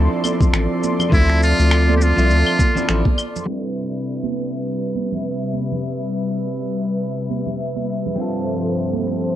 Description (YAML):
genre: sunset chillout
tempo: 102 BPM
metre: 4/4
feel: swing 57% on 16ths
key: C major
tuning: A4 = 440 Hz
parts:
  - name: electric guitar at the edge of break-up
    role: accompaniment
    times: 0.0-9.4 s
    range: F3 to E5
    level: -24 LUFS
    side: equal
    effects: auto-pan, cassette tape, analog delay
  - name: airy breathy pad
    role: sustained chords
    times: 0.0-9.4 s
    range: G2 to C6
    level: -24 LUFS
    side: left 1 dB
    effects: chorus, cassette tape
  - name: round analog bass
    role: bass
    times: 0.0-3.0 s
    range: A1 to D2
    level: -16 LUFS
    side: equal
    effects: none
  - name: electronic claves, shaker and finger snaps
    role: drums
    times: 0.2-9.3 s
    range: none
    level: -24 LUFS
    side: left 2 dB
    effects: small room ambience, cassette tape
  - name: congas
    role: percussion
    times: 0.2-9.0 s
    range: none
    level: -28 LUFS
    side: right 11 dB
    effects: none
  - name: electronic kick drum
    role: drums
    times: 0.4-3.2 s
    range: none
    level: -16 LUFS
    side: equal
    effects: small room ambience, cassette tape
  - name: trumpet with metal mute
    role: melody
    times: 1.1-3.2 s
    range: E4 to G4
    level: -20 LUFS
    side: equal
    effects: cassette tape, analog delay
room: moderate booth ambience, RT60 0.2 s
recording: home recording on cassette, low-pass filter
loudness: -17 LUFS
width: side -12 dB against mid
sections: 0.0-3.5 A section; 3.5-9.4 B section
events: filter sweep 3.5-9.4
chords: 0.0 Dm7; 3.5 Cmaj7; 8.2 G9sus4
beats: 0.54 | 1.12 1.71 2.30 2.89 | 3.48 4.06 4.65 5.24 | 5.83 6.42 7.01 7.59 | 8.18 8.77